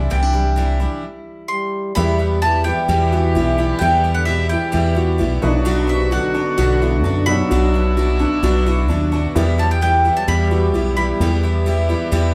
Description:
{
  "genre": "folk",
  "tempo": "130 BPM",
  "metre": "4/4",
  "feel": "straight",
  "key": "E minor",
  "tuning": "A4 = 443 Hz",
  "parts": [
    { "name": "mandolin", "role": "melody", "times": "0.0-11.9 s", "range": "E5 to C6", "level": "-24 LUFS", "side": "equal", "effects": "none" },
    { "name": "fingerpicked steel-string acoustic guitar", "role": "accompaniment", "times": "0.0-2.9 s", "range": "C3 to E4", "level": "-31 LUFS", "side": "equal", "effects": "none" },
    { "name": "picked twelve-string acoustic guitar", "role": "accompaniment", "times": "0.0-12.3 s", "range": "E2 to F#4", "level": "-28 LUFS", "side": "equal", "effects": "none" },
    { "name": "fingered electric bass", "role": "bass", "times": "0.0-12.3 s", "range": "B1 to F#2", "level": "-21 LUFS", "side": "equal", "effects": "none" },
    { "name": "clear trombone", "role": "second line", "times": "1.5-11.9 s", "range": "B2 to G3", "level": "-27 LUFS", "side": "equal", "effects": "none" },
    { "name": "felt-muted upright piano", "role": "accompaniment", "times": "2.0-12.3 s", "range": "B1 to E5", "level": "-30 LUFS", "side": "equal", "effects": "none" },
    { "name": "warm brass ensemble", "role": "sustained chords", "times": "2.0-12.3 s", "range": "B3 to G4", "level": "-30 LUFS", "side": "equal", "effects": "none" },
    { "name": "dark upright piano", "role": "arpeggios", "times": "2.0-12.3 s", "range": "D4 to G4", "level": "-26 LUFS", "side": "equal", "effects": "none" }
  ],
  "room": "moderate large studio reverb, RT60 0.9 s",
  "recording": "band playing live in one room",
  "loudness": "-17 LUFS",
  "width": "mono",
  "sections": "0.0-2.0 A section; 2.0-12.3 B section",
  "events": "stop 1.0-2.0",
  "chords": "0.0 Cadd9; 2.0 Em; 5.4 Bm; 9.4 Em"
}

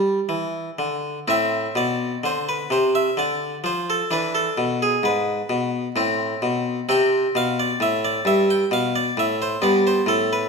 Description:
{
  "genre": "classical, baroque-style suite movement for harpsichord",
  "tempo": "65 BPM",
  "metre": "3/4",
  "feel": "rubato",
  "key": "A minor",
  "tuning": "A4 = 440 Hz",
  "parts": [
    { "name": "harpsichord", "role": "solo", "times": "0.0-10.5 s", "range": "G2 to G5", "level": "-19 LUFS", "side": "equal", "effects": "none" }
  ],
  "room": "wet recital hall reverb, RT60 1.6 s",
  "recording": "none",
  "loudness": "-19 LUFS",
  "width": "side -4 dB against mid",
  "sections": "0.0-1.3 A section; 1.3-10.5 A section",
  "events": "none",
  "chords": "0.0 C; 1.3 Am; 4.1 E7; 5.9 Am; 6.9 C5"
}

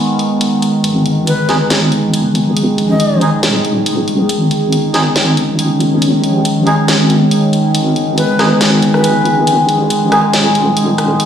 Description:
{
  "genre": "deep dubstep",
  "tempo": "139 BPM",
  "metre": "4/4",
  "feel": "swing 54% on 16ths, half-time",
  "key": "G# phrygian",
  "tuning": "A4 = 440 Hz",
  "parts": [
    { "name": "overtone-sweeping drone", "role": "sustained chords", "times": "0.0-11.3 s", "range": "D#3 to G#4", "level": "-13 LUFS", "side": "equal", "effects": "chorus, built-in reverb" },
    { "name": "garage drum kit", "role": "drums", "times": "0.2-11.3 s", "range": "hi-hat, rim click, snare drum", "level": "-18 LUFS", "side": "equal", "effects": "high-pass filter on hats, studio reverb, high-pass filter on snare" },
    { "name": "deep soft wobble bass", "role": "bass", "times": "0.8-11.3 s", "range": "D#1 to A1", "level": "-16 LUFS", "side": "equal", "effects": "chorus, high-pass filter" },
    { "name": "breathy bright long shakuhachi", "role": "melody", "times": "1.3-3.2, 8.2-9.4 s", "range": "B4 to D#5", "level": "-20 LUFS", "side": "left 1 dB", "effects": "dub echo" },
    { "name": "melodica", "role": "stabs", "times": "1.5-10.2 s", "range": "G#3 to G#4", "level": "-20 LUFS", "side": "right 1 dB", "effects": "vintage 12-bit sampler grit, low-pass filter, dub echo" }
  ],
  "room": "moderate digital room reverb, RT60 0.9 s, small room ambience",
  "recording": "played on a big sound system in a bare room, large studio reverb",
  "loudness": "-10 LUFS",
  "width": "side -9 dB against mid",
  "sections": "0.8-11.3 A section",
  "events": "build-up 0.8-11.3",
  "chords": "0.0 G#5"
}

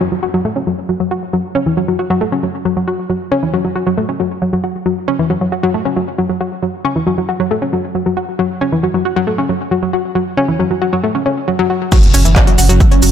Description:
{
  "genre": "driving peak-time techno",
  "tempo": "136 BPM",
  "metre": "4/4",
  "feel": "straight",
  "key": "F# minor",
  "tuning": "A4 = 440 Hz",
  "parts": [
    { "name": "analog pluck", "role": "riff", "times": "0.0-13.1 s", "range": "E3 to F#4", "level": "-14 LUFS", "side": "left 1 dB", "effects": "chorus, tube saturation, sidechain pumping, ping-pong delay" },
    { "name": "downlifter and impact", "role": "sound effects", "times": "0.0-1.3, 11.9-13.1 s", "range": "none", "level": "-22 LUFS", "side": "equal", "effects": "none" },
    { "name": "swarming drone", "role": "drone", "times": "12.2-13.1 s", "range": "F#3 to C#4", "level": "-19 LUFS", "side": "right 4 dB", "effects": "built-in reverb, sidechain pumping" },
    { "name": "electronic kick drum", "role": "drums", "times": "11.9-12.9 s", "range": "none", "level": "-10 LUFS", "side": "equal", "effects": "none" },
    { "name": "techno drum kit", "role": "drums", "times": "11.9-13.1 s", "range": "crash cymbal, handclaps, hi-hat, shaker", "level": "-17 LUFS", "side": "right 1 dB", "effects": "sidechain pumping on hats, low-pass filter on hats, sidechain pumping on perc, low-pass filter on perc, low-pass filter on snare, sidechain pumping on cymbals, low-pass filter on cymbals, low-pass filter on room" },
    { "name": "warm sub bass", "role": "bass", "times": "12.1-13.1 s", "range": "F#1", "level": "-12 LUFS", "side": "equal", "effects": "tube saturation, sidechain pumping, low-pass filter" }
  ],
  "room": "light reverb, digital ambience",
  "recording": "none",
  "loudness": "-13 LUFS",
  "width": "side -9 dB against mid",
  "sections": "0.0-11.9 A section; 11.9-13.1 B section",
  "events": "filter sweep on drum 0.0-11.9; filter sweep on synth arpeggio sound 0.0-11.9; drop 11.9-13.1; impact 11.9-13.1",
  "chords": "0.0 F#5; 11.9 F#m"
}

